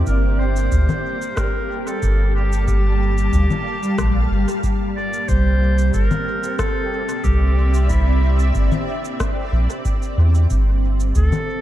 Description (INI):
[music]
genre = ambient dub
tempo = 92 BPM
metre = 4/4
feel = straight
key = G dorian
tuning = A4 = 440 Hz
[part]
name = granular cloud pad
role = sustained chords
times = 0.0-11.6 s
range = G3 to A5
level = -24 LUFS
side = equal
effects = built-in reverb, ensemble chorus
[part]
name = soft dub sub bass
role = bass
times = 0.0-11.3 s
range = G1 to E2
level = -16 LUFS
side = equal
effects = tube saturation
[part]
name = bright clarinet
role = melody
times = 0.1-11.6 s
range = E4 to D5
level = -26 LUFS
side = equal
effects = dub echo
[part]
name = electronic cabasa, congas and rim click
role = drums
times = 0.1-11.4 s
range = none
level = -29 LUFS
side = left 3 dB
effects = dub echo
[part]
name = electronic kick drum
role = drums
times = 0.1-11.3 s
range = none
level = -23 LUFS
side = equal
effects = none
[sound]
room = light reverb, digital ambience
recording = none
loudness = -16 LUFS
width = side -13 dB against mid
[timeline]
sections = 0.1-11.6 A section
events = none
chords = 0.1 Gm9; 5.3 C9; 10.5 Gsus2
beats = | 0.07 0.72 1.38 2.03 | 2.68 3.33 3.98 4.64 | 5.29 5.94 6.59 7.25 | 7.90 8.55 9.20 9.85 | 10.51 11.16